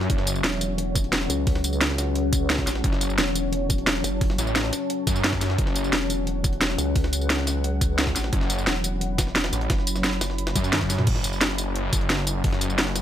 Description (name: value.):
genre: dark technical drum and bass.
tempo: 175 BPM.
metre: 4/4.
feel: straight.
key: F# minor.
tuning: A4 = 444 Hz.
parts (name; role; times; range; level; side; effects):
deep dark ambient pad; sustained chords; 0.0-13.0 s; F#3 to B5; -29 LUFS; left 2 dB; chorus, built-in reverb, sidechain pumping.
wide detuned saw bass; bass; 0.0-0.4, 2.8-5.9, 8.3-13.0 s; F#1 to F#2; -26 LUFS; equal; chorus, tube saturation, sidechain pumping.
jungle sampler-style drum kit; drums; 0.0-13.0 s; hi-hat, snare drum; -34 LUFS; equal; none.
drum and bass drum kit; drums; 0.1-13.0 s; crash cymbal, hi-hat, snare drum, tambourine, toms; -25 LUFS; equal; overdrive.
electronic kick drum; drums; 0.1-12.5 s; none; -25 LUFS; equal; overdrive.
vowel-sweep wobble bass; bass; 0.4-10.5 s; E1 to C#2; -27 LUFS; equal; chorus, tube saturation.
room: little or no reverb.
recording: none.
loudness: -21 LUFS.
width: side -11 dB against mid.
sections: 0.0-11.1 A section; 11.1-13.0 A section.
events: drop 0.0-11.1, 11.1-13.0; drum fill 10.6-11.1.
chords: 0.0 F#5.